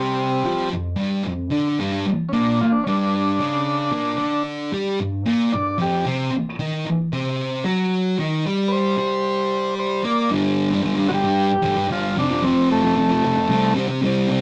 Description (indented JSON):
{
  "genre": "rock",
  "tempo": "113 BPM",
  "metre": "4/4",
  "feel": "straight",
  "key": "unclear",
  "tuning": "A4 = 440 Hz",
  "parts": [
    { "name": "overdriven combo organ", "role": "melody", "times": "0.0-13.7 s", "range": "G3 to D5", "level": "-24 LUFS", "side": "equal", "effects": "none" },
    { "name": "thick fuzz guitar", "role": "riff", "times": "0.0-14.4 s", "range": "F2 to Bb4", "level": "-22 LUFS", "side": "equal", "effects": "distortion" }
  ],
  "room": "moderate small room reverb, RT60 0.6 s",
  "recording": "rough rehearsal-room recording, tube saturation",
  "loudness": "-21 LUFS",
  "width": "mono",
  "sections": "0.0-10.3 A section; 10.3-14.4 B section",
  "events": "none",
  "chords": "0.0 F5; 1.8 G5; 6.1 C5; 10.3 G5; 12.2 F; 13.5 C5"
}